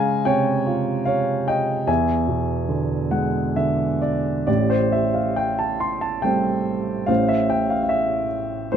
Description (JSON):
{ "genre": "classical, lyrical solo piano", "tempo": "66-76 BPM", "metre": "3/4", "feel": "rubato", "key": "unclear", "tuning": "A4 = 441 Hz", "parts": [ { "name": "dark baby grand piano", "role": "solo", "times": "0.0-8.8 s", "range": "A1 to C6", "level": "-19 LUFS", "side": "right 1 dB", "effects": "none" } ], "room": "little or no reverb", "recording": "close, detailed microphones", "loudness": "-19 LUFS", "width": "side -8 dB against mid", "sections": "0.0-4.5 A section; 4.5-8.8 B section", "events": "grand piano fill 2.7-4.5", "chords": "0.0 Dbmaj7; 1.9 E7; 4.5 Am7; 7.1 Fmaj7/A" }